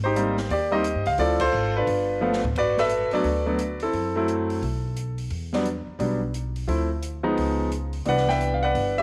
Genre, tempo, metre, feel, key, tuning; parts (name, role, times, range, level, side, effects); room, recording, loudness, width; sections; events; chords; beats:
jazz piano trio; 174 BPM; 4/4; swing 63% on 8ths; G major; A4 = 442 Hz
clear concert grand piano; melody; 0.0-9.0 s; E3 to G5; -25 LUFS; equal
upright bass; bass; 0.0-9.0 s; G1 to G2; -31 LUFS; equal
open jazz drum kit; drums; 0.2-8.9 s; crash cymbal, hi-hat, kick drum, snare drum, toms; -40 LUFS; equal
moderate echo chamber reverb, RT60 1.4 s, small room ambience; -25 LUFS; mono
0.0-2.6 A section; 2.6-9.0 B section
band accent 1.4; drum fill 2.2-2.6
0.0 Abmaj7; 1.2 Dm7; 1.9 G7; 3.9 F#m7b5; 4.6 Asus2/B; 5.3 Em7; 6.7 Dm7; 7.4 C#9; 8.1 Cmaj9
0.16 0.50 0.84 | 1.19 1.53 1.87 2.22 | 2.56 2.90 3.25 3.59 | 3.94 4.28 4.62 4.97 | 5.31 5.66 6.00 6.34 | 6.69 7.03 7.38 7.72 | 8.06 8.41 8.75